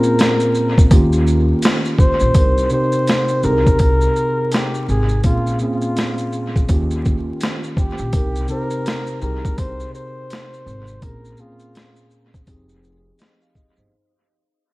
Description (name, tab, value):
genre	lo-fi hip hop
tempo	83 BPM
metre	4/4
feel	swing 60% on 16ths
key	F minor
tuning	A4 = 439 Hz
part	breathy flugelhorn	melody	0.0-12.1 s	F4 to C5	-22 LUFS	equal	low-pass filter, dub echo
part	mellow tine electric piano	accompaniment	0.0-14.1 s	Bb2 to F5	-21 LUFS	equal	medium stereo tremolo, low-pass filter, dub echo
part	boom bap sampler-style drum kit	drums	0.0-13.9 s	hi-hat, kick drum, shaker, snare drum	-17 LUFS	equal	none
part	upright bass	bass	0.9-13.9 s	F1 to Eb2	-20 LUFS	equal	none
room	light reverb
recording	echo-heavy mix, vinyl crackle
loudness	-15 LUFS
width	side -20 dB against mid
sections	0.0-13.9 A section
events	fade-out 1.2-13.9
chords	0.0 Bbm7; 0.9 Eb7; 2.4 Cm7; 3.4 Abmaj9; 5.2 Bbm7; 6.7 Eb7; 8.1 Cm7; 9.2 Abmaj9; 11.0 Bbm7; 12.5 Fm9